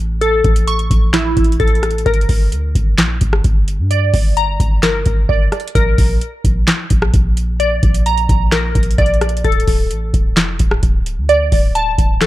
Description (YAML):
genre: hip hop, trap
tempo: 130 BPM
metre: 4/4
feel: half-time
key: unclear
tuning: A4 = 440 Hz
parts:
  - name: glassy wavetable pluck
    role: arpeggios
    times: 0.0-12.3 s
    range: E4 to C#6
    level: -17 LUFS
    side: equal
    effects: chorus, digital delay
  - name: clean 808-style bass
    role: bass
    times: 0.0-12.3 s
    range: D1 to G2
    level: -17 LUFS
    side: equal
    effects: none
  - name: booming analog drum machine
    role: drums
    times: 0.2-12.3 s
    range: handclaps, hi-hat, kick drum, rim click, snare drum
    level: -15 LUFS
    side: equal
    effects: none
room: digital ambience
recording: dark, warm production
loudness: -12 LUFS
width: side -16 dB against mid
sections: 0.0-12.3 A section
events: none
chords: 0.0 A; 2.1 Gm; 5.8 Bb; 9.4 D5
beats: | 0.21 0.68 1.14 1.60 | 2.06 2.52 2.98 3.44 | 3.91 4.37 4.83 5.29 | 5.75 6.21 6.67 7.14 | 7.60 8.06 8.52 8.98 | 9.45 9.91 10.37 10.83 | 11.29 11.75 12.21